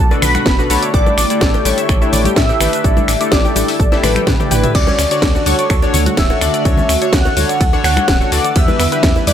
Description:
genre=progressive house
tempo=126 BPM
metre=4/4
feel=straight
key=D major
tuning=A4 = 439 Hz
part: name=warm velvety synth lead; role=melody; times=0.0-9.3 s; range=B4 to B5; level=-19 LUFS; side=equal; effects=chorus, cassette tape, ping-pong delay
part: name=glassy wavetable pluck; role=second line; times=0.0-9.3 s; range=B5 to B6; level=-26 LUFS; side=right 2 dB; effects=chorus, sidechain pumping, ping-pong delay
part: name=airy breathy pad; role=sustained chords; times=0.0-9.3 s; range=D3 to G4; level=-24 LUFS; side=right 2 dB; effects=chorus, phaser, sidechain pumping
part: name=analog pluck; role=arpeggios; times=0.0-9.3 s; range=B3 to E5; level=-22 LUFS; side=left 1 dB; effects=analog chorus, sidechain pumping, ping-pong delay
part: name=round analog bass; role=bass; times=0.0-9.3 s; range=D1 to A2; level=-19 LUFS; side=equal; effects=sidechain pumping
part: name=chorused polysynth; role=stabs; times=0.1-9.3 s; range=B2 to D5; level=-20 LUFS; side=left 4 dB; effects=sidechain pumping, ping-pong delay
part: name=house drum kit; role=drums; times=0.1-9.3 s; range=crash cymbal, finger snaps, hi-hat, ride cymbal, shaker, snare drum, toms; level=-19 LUFS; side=equal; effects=none
part: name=bongos and congas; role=percussion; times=0.1-9.3 s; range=none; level=-25 LUFS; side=left 4 dB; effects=sidechain pumping on perc
part: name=electronic kick drum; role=drums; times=0.5-9.1 s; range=none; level=-15 LUFS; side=equal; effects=none
room=little or no reverb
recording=none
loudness=-11 LUFS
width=side -9 dB against mid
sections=0.0-9.3 A section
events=drum fill 4.0-4.7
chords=0.0 Bm7; 0.9 A7sus4; 4.7 Dmaj7; 8.6 Em7

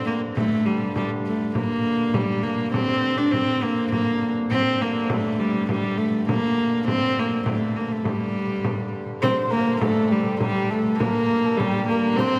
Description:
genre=medieval dance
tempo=102 BPM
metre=2/4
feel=straight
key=G minor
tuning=A4 = 438 Hz
part: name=warm viola da gamba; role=melody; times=0.0-12.4 s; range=G3 to D4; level=-24 LUFS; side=equal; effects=none
part: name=hand-pumped harmonium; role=drone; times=0.0-12.4 s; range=G2 to D3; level=-34 LUFS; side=equal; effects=none
part: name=frame drum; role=percussion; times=0.1-12.4 s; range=none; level=-31 LUFS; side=equal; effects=none
part: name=breathy mellow tenor recorder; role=second line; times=9.2-12.4 s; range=G4 to C5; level=-32 LUFS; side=equal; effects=none
part: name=dark erhu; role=second line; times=9.2-12.4 s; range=G4 to C5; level=-33 LUFS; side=equal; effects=none
room=wet cathedral reverb, RT60 4.5 s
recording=recorded in a church or concert hall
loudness=-23 LUFS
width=mono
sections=0.0-9.2 A section; 9.2-12.4 A section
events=none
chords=none

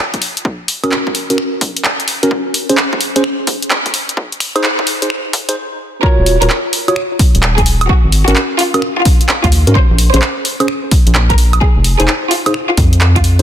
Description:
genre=UK garage, two-step garage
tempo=129 BPM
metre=4/4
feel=swing 66% on 16ths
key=Eb dorian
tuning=A4 = 441 Hz
part: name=electronic kick drum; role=drums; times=0.1-13.2 s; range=none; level=-13 LUFS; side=equal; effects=high-pass filter on kick
part: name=punchy analog drum machine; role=drums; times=0.1-13.4 s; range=finger snaps, handclaps, hi-hat, woodblock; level=-16 LUFS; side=right 1 dB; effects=none
part: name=mellow tine electric piano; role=stabs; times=0.8-13.4 s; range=Db4 to Db5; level=-17 LUFS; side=equal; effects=low-pass filter, ping-pong delay
part: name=clear studio violin section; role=melody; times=6.0-13.4 s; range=F4 to C5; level=-18 LUFS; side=equal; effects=tape echo
part: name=rubbery square bass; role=bass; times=6.2-13.4 s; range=Eb1 to Ab2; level=-11 LUFS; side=equal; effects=none
room=light reverb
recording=dense, heavily limited modern master, high-pass filter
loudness=-11 LUFS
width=side -10 dB against mid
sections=0.0-6.0 A section; 6.0-13.4 B section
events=build-up 0.0-6.0; filter sweep on tine electric piano 0.0-6.0; stop 5.6-6.0; drop 6.0-13.4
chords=0.5 Dbsus4; 2.3 Db5; 4.2 Ebsus4; 6.0 Ebm9; 7.9 Ab9sus4; 9.8 N.C.; 11.6 Fm

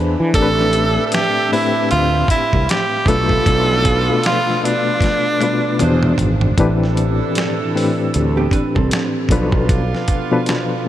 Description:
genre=R&B, neo-soul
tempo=77 BPM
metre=4/4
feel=swing 59% on 16ths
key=A minor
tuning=A4 = 442 Hz
part: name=reed electric piano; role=accompaniment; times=0.0-10.9 s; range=A2 to B5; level=-19 LUFS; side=left 3 dB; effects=fast tremolo
part: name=fretless electric bass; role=bass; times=0.0-9.9 s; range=G#1 to E3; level=-18 LUFS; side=equal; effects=none
part: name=warm saxophone section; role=stabs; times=0.3-10.9 s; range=B3 to E5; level=-27 LUFS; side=right 6 dB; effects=none
part: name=dusty soul sampler-style drum kit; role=drums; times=0.3-10.7 s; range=finger snaps, hi-hat, kick drum, snare drum, toms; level=-21 LUFS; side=equal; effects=none
part: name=edgy tenor saxophone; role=melody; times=0.4-6.2 s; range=D4 to A4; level=-19 LUFS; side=right 1 dB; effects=none
part: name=vintage hollow-body jazz guitar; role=second line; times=8.4-9.3 s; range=B3 to B4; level=-26 LUFS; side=right 4 dB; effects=analog delay
room=moderate huge ambient reverb, RT60 7.4 s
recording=dreamy mix soaked in reverb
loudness=-14 LUFS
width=side -12 dB against mid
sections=0.0-10.9 A section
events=reed electric piano fill 0.0-0.3; drum fill 5.0-6.6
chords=0.3 Am11; 3.1 Bm7b5; 5.8 E7b13; 6.6 Am11; 9.3 Bm7b5

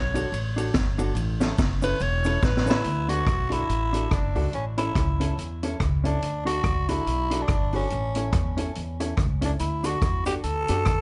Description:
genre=ska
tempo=142 BPM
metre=4/4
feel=swing 59% on 8ths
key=D major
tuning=A4 = 442 Hz
part: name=clear alto saxophone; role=melody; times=0.0-2.9 s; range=B4 to C#5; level=-33 LUFS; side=equal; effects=tape echo
part: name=upright bass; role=bass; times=0.0-11.0 s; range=E1 to F#2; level=-30 LUFS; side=equal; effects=none
part: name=mellow electric guitar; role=accompaniment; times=0.1-10.8 s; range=C#4 to A4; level=-33 LUFS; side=equal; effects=none
part: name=street-band drum kit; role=drums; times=0.2-11.0 s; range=hi-hat, kick drum, ride cymbal, rim click, snare drum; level=-29 LUFS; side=equal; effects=none
part: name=cabasa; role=percussion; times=0.2-2.8, 9.6-11.0 s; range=none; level=-50 LUFS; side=equal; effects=tape echo
part: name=growling tenor saxophone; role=melody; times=2.7-11.0 s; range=C#4 to A4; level=-31 LUFS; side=equal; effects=tape echo
room=light reverb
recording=dark, warm production, nothing above 11.0 kHz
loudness=-25 LUFS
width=mono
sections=0.0-2.8 A section; 2.8-11.0 B section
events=alto saxophone solo 0.0-2.8; drum fill 2.4-2.8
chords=0.0 D; 1.2 A; 2.8 D; 4.5 A; 6.2 D; 7.9 A; 9.6 D

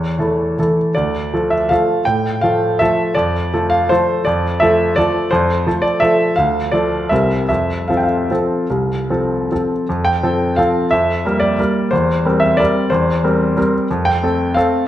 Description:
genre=classical, piano waltz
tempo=145-192 BPM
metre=3/4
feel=rubato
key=D minor, F major from 5.3 s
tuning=A4 = 440 Hz
part: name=bright baby grand piano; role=solo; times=0.0-14.9 s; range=C2 to G5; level=-14 LUFS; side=equal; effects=none
room=wet recital hall reverb, RT60 1.5 s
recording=nothing above 10.8 kHz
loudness=-14 LUFS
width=side -12 dB against mid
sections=0.0-9.9 A section; 9.9-14.9 B section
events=none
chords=0.0 A; 1.0 Dm; 3.2 Dm/F; 6.4 Dm; 7.1 C7; 7.5 F; 10.9 Gm7/F; 11.9 C7/E; 13.9 F

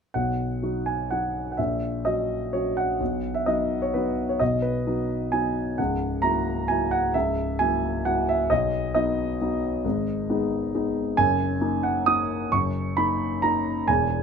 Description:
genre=classical, piano waltz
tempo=121-142 BPM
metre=3/4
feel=rubato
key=B major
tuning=A4 = 440 Hz
part: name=warm grand piano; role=solo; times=0.1-14.2 s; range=C#1 to D#6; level=-22 LUFS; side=equal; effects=none
room=light reverb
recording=close, detailed microphones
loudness=-22 LUFS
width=side -6 dB against mid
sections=0.1-14.2 A section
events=none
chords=0.1 B; 1.6 F#7/A#; 3.0 B; 5.8 F#7/C#; 8.5 B; 9.8 G#m; 11.2 D#m/F#

